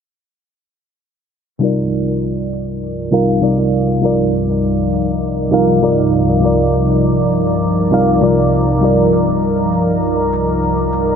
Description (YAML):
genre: sunset chillout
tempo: 100 BPM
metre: 4/4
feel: straight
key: C minor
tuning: A4 = 440 Hz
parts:
  - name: mellow FM electric piano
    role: accompaniment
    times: 1.6-11.2 s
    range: C3 to F5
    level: -15 LUFS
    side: equal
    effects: chorus, auto-pan, vintage 12-bit sampler grit, low-pass filter, analog delay
  - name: lush unison pad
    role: sustained chords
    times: 1.6-11.2 s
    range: C2 to D5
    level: -16 LUFS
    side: equal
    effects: chorus
  - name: cabasa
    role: drums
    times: 1.6-11.2 s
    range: none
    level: -53 LUFS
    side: left 1 dB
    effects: none
room: moderate spring reverb, RT60 2.1 s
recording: echo-heavy mix, low-pass filter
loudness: -13 LUFS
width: side -7 dB against mid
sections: 1.6-11.2 A section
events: filter sweep on FM electric piano 1.6-11.2; filter sweep on analog synth pad 1.6-11.2; filter sweep 1.6-11.2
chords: 1.6 Cm11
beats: | 1.63 2.23 2.83 3.43 | 4.03 4.63 5.23 5.83 | 6.43 7.03 7.63 8.23 | 8.83 9.43 10.03 10.63